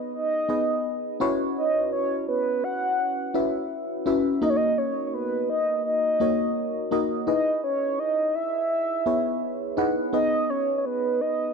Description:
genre	pop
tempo	84 BPM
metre	4/4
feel	straight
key	G# minor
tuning	A4 = 440 Hz
part	mellow FM electric piano	accompaniment	0.0-11.5 s	A#3 to F#5	-26 LUFS	left 1 dB	chorus, phaser
part	mellow horn-like synth lead	melody	0.1-11.5 s	B4 to F#5	-25 LUFS	right 1 dB	chorus, digital delay
room	light reverb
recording	none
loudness	-22 LUFS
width	side -5 dB against mid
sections	0.0-11.5 A section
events	none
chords	0.0 G#m; 1.2 F#7sus4; 4.4 D#m; 7.3 Emaj7; 10.1 G#m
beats	0.13 0.85 | 1.56 2.28 2.99 3.71 | 4.42 5.13 5.85 6.56 | 7.28 7.99 8.71 9.42 | 10.13 10.85

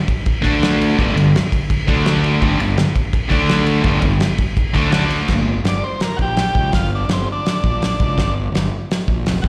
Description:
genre	garage rock duo or trio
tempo	167 BPM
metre	4/4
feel	straight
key	G minor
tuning	A4 = 441 Hz
part	cloth-damped thuddy drum kit	drums	0.1-9.5 s	crash cymbal, hi-hat, kick drum, ride cymbal, snare drum	-21 LUFS	equal	none
part	thick fuzz guitar	riff	0.4-5.3 s	G2 to D4	-20 LUFS	equal	distortion, slapback echo
part	fuzz fingered electric bass	bass	0.4-9.5 s	F1 to D2	-22 LUFS	equal	overdrive
part	overdriven combo organ	melody	5.7-9.4 s	C4 to D5	-25 LUFS	equal	slapback echo
room	small room ambience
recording	live gig heard through the venue's PA, recital hall reverb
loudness	-17 LUFS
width	mono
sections	0.0-5.3 A section; 5.3-9.5 B section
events	none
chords	0.4 D5; 1.0 G5; 1.9 D5; 2.4 G5; 3.3 D5; 3.8 G5; 4.9 D5; 5.3 Gm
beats	0.26 0.61 | 0.97 1.33 1.69 2.05 | 2.41 2.77 3.13 3.49 | 3.85 4.21 4.57 4.92 | 5.28 5.64 6.00 6.37 | 6.73 7.09 7.45 7.81 | 8.17 8.53 8.89 9.25

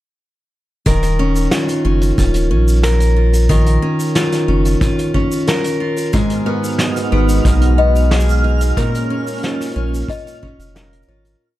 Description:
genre	folktronica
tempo	91 BPM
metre	4/4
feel	straight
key	Eb minor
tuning	A4 = 440 Hz
part	picked steel-string acoustic guitar	arpeggios	0.9-11.6 s	Ab2 to Bb4	-18 LUFS	left 1 dB	ping-pong delay
part	warm sub bass	bass	0.9-11.4 s	Eb1 to Cb2	-14 LUFS	equal	none
part	kick drum	drums	0.9-10.6 s	none	-18 LUFS	equal	none
part	vintage brush drum kit	drums	0.9-11.4 s	hi-hat, shaker, snare drum	-24 LUFS	equal	none
part	warm analog pad	sustained chords	6.1-11.4 s	Ab3 to Gb4	-22 LUFS	right 2 dB	wide subtle chorus
part	twinkling granular texture	texture	6.4-11.4 s	F6	-28 LUFS	right 5 dB	built-in reverb
part	music box	second line	6.5-11.3 s	Eb4 to F5	-24 LUFS	left 6 dB	digital delay
room	little or no reverb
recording	dark, warm production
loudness	-13 LUFS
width	side -15 dB against mid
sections	0.9-11.4 groove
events	fade-out 7.9-11.4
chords	0.9 Eb7sus2; 6.1 Abm7; 8.8 Bbm7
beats	| 0.86 1.52 2.18 2.84 | 3.50 4.16 4.82 5.48 | 6.14 6.79 7.46 8.11 | 8.77 9.43 10.09 10.75

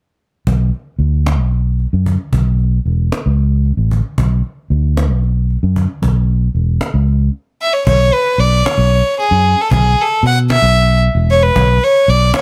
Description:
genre	progressive instrumental, band music in an uneven meter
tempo	228 BPM (eighths)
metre	7/8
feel	straight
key	B dorian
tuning	A4 = 441 Hz
part	fingered electric bass	bass	0.5-12.3 s	E1 to B2	-15 LUFS	equal	none
part	cajon	drums	0.5-12.4 s	none	-24 LUFS	equal	none
part	clear violin	melody	7.6-12.4 s	G#4 to F#5	-15 LUFS	equal	none
room	little or no reverb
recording	none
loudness	-14 LUFS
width	mono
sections	0.5-7.9 A section; 7.9-12.4 B section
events	break 7.3-7.9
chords	0.5 Bm; 2.3 Aadd9/E; 4.2 Bm; 6.0 C#m7/E; 7.9 Bsus2; 9.7 E5; 11.6 Bsus2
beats	| 0.48 0.74 1.01 1.27 1.53 1.80 2.06 | 2.33 2.59 2.86 3.12 3.39 3.65 3.91 | 4.18 4.44 4.71 4.97 5.23 5.50 5.76 | 6.03 6.29 6.55 6.82 7.08 7.34 7.61 | 7.87 8.13 8.40 8.66 8.92 9.19 9.45 | 9.71 9.97 10.24 10.50 10.76 11.03 11.29 | 11.55 11.81 12.08 12.34

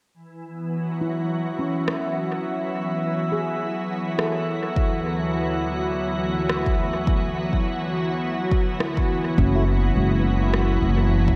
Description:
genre	ambient dub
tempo	104 BPM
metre	4/4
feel	swing 58% on 16ths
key	unclear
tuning	A4 = 440 Hz
part	soft additive organ-like pad	sustained chords	0.1-11.4 s	D2 to F#4	-27 LUFS	equal	ensemble chorus, built-in reverb
part	drifting glass-harmonics texture	texture	1.3-9.4 s	E5	-36 LUFS	equal	chorus, built-in reverb
part	handpan	arpeggios	1.0-11.4 s	G#3 to A4	-33 LUFS	equal	low-pass filter, dub echo
part	electronic rim click	drums	1.9-10.7 s	none	-33 LUFS	equal	dub echo
part	electronic kick drum	drums	4.8-11.4 s	none	-25 LUFS	equal	overdrive
part	upright bass	bass	9.4-11.4 s	F#1	-22 LUFS	equal	none
part	tonewheel organ	stabs	9.6 s	A3 to F#4	-37 LUFS	equal	none
room	wet lush hall reverb, RT60 2.0 s, digital ambience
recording	dreamy mix soaked in reverb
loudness	-23 LUFS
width	mono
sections	0.1-9.4 A section; 9.4-11.4 B section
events	filter sweep on handpan 0.1-9.4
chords	0.1 F#m7; 4.8 D; 9.4 F#7(no3)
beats	| 0.15 0.72 1.30 1.88 | 2.46 3.03 3.61 4.19 | 4.76 5.34 5.92 6.49 | 7.07 7.65 8.22 8.80 | 9.38 9.96 10.53 11.11

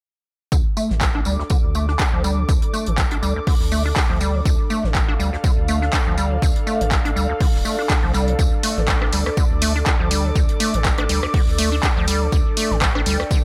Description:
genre	acid house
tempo	122 BPM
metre	4/4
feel	swing 56% on 16ths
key	D minor pentatonic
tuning	A4 = 441 Hz
part	acid bass, square	riff	0.5-13.4 s	D2 to D4	-27 LUFS	equal	overdrive, analog chorus, sidechain pumping, analog delay
part	round analog bass	bass	0.5-13.2 s	D1 to D2	-25 LUFS	equal	tube saturation, sidechain pumping
part	damped 70s drum kit	drums	0.5-13.4 s	hi-hat, snare drum, tambourine	-35 LUFS	equal	high-pass filter on hats, high-pass filter on snare, high-pass filter on perc, high-pass filter on room
part	electronic kick drum	drums	0.5-13.4 s	none	-22 LUFS	equal	none
part	airy breathy pad	texture	0.5-13.4 s	D4 to D6	-30 LUFS	equal	chorus, sidechain pumping
part	punchy analog drum machine	drums	1.0-13.3 s	handclaps, hi-hat, rim click	-26 LUFS	equal	none
room	light reverb, studio ambience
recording	none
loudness	-19 LUFS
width	mono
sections	0.5-13.4 A section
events	none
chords	0.5 D5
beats	| 0.52 1.01 1.50 2.00 | 2.49 2.98 3.47 3.96 | 4.46 4.95 5.44 5.93 | 6.42 6.91 7.41 7.90 | 8.39 8.88 9.37 9.87 | 10.36 10.85 11.34 11.83 | 12.32 12.81 13.31

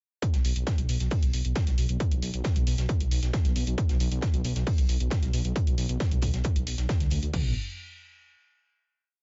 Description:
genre	driving peak-time techno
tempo	135 BPM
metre	4/4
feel	straight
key	B minor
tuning	A4 = 440 Hz
part	compact cocktail drum kit	drums	0.2-7.3 s	hi-hat, snare drum	-47 LUFS	equal	high-pass filter on hats, high-pass filter on snare, high-pass filter on room
part	electronic hi-hat	drums	0.2-7.3 s	none	-40 LUFS	equal	overdrive
part	techno drum kit	drums	0.2-7.4 s	crash cymbal, kick drum, toms	-29 LUFS	equal	none
part	dark detuned saw bass	bass	0.3-7.5 s	B1 to D2	-30 LUFS	equal	tube saturation, sidechain pumping
room	little or no reverb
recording	nothing above 7.6 kHz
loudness	-27 LUFS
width	mono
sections	0.2-7.3 groove; 7.3-9.1 final chord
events	none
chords	none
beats	| 0.22 0.67 1.11 1.56 | 2.00 2.45 2.89 3.33 | 3.78 4.22 4.67 5.11 | 5.56 6.00 6.45 6.89 | 7.33

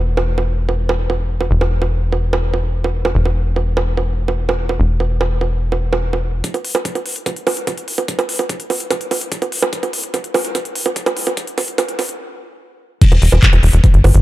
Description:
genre	psychedelic trance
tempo	146 BPM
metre	4/4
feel	straight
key	unclear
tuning	A4 = 440 Hz
part	tight sequencer bass	bass	0.0-6.4, 13.1-14.2 s	E1 to G1	-15 LUFS	equal	none
part	drum and bass drum kit	drums	0.2-14.2 s	bongos, crash cymbal, handclaps, hi-hat	-19 LUFS	right 3 dB	none
part	electronic kick drum	drums	6.4-13.9 s	none	-14 LUFS	equal	high-pass filter on kick, high-pass filter on room
room	light reverb, digital ambience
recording	dark, warm production, high-pass filter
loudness	-15 LUFS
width	side -16 dB against mid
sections	0.0-6.4 A section; 6.4-13.0 B section; 13.0-14.2 C section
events	build-up 6.4-13.0; drum fill 9.7-12.2; stop 12.2-13.0; drop 13.0-14.2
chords	none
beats	0.28 0.69 1.10 | 1.51 1.92 2.33 2.74 | 3.15 3.56 3.97 4.38 | 4.80 5.21 5.62 6.03 | 6.44 6.85 7.26 7.67 | 8.08 8.49 8.91 9.32 | 9.73 10.14 10.55 10.96 | 11.37 11.78 12.19 12.60 | 13.02 13.43 13.84

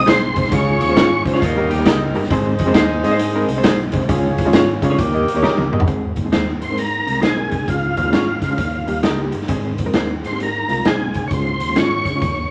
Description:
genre	uptempo 1960s-style soul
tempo	133 BPM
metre	4/4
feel	swing 65% on 8ths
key	Ab major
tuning	A4 = 441 Hz
part	tonewheel organ	melody	0.0-1.2, 6.6-12.5 s	F4 to Db5	-23 LUFS	equal	chorus vibrato, slow rotary speaker
part	dark horn section	second line	0.0-5.7 s	Bb3 to Eb5	-26 LUFS	equal	none
part	overdriven reed electric piano	accompaniment	0.0-12.2 s	G3 to Eb5	-24 LUFS	equal	fast tremolo
part	fingered electric bass	bass	0.0-12.5 s	Gb1 to Db3	-27 LUFS	equal	none
part	clean electric guitar	stabs	0.1-11.9 s	Db4 to Eb5	-23 LUFS	equal	none
part	raw garage drum kit	drums	0.1-12.4 s	hi-hat, kick drum, snare drum, toms	-22 LUFS	equal	none
part	electric guitar through a small old amp	riff	1.4-2.3 s	C4 to G4	-29 LUFS	equal	none
room	wet studio reverb, RT60 0.5 s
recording	none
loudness	-18 LUFS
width	mono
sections	0.0-5.9 A section; 5.9-12.5 B section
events	drum fill 5.4-5.9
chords	0.0 Ab; 0.5 Db; 1.4 Eb; 2.3 Ab; 4.1 Db; 5.0 Eb; 5.9 Ab; 7.7 Db; 8.6 Eb; 9.5 Ab; 11.3 Db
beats	0.07 | 0.52 0.97 1.41 1.86 | 2.30 2.75 3.20 3.64 | 4.09 4.54 4.98 5.43 | 5.88 6.33 6.78 7.23 | 7.68 8.14 8.59 9.04 | 9.49 9.95 10.40 10.85 | 11.31 11.76 12.21

